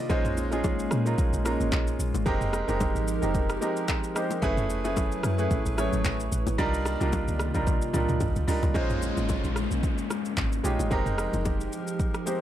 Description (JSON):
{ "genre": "amapiano", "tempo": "111 BPM", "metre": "4/4", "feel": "swing 55% on 16ths", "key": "Bb dorian", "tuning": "A4 = 440 Hz", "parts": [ { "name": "clear concert grand piano", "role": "accompaniment", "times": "0.0-12.4 s", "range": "G3 to Eb5", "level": "-30 LUFS", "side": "right 2 dB", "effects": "none" }, { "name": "hollow soft pad", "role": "sustained chords", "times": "0.0-12.4 s", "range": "C3 to D5", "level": "-33 LUFS", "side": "left 1 dB", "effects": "chorus, sidechain pumping" }, { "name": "deep log drum bass", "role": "bass", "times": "0.1-11.7 s", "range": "F1 to Bb2", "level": "-29 LUFS", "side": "equal", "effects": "none" }, { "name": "deep house drum kit", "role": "drums", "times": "0.1-12.4 s", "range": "handclaps, hi-hat, kick drum, rim click, shaker, toms", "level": "-30 LUFS", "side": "equal", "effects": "none" }, { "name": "congas and bongos", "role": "percussion", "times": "0.1-12.4 s", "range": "none", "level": "-36 LUFS", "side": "left 3 dB", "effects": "none" }, { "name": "downlifter", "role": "sound effects", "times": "8.8-12.4 s", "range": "none", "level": "-38 LUFS", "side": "equal", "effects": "none" } ], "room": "little or no reverb", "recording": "dark, warm production", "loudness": "-24 LUFS", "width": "side -12 dB against mid", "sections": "0.0-8.8 A section; 8.8-12.4 B section", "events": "drop 0.0-8.8; drum fill 7.7-8.8", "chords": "0.1 Bbm11; 2.3 Fm11; 4.4 Gbm11; 6.6 Cm11; 8.8 Bbm11; 10.9 Fm11" }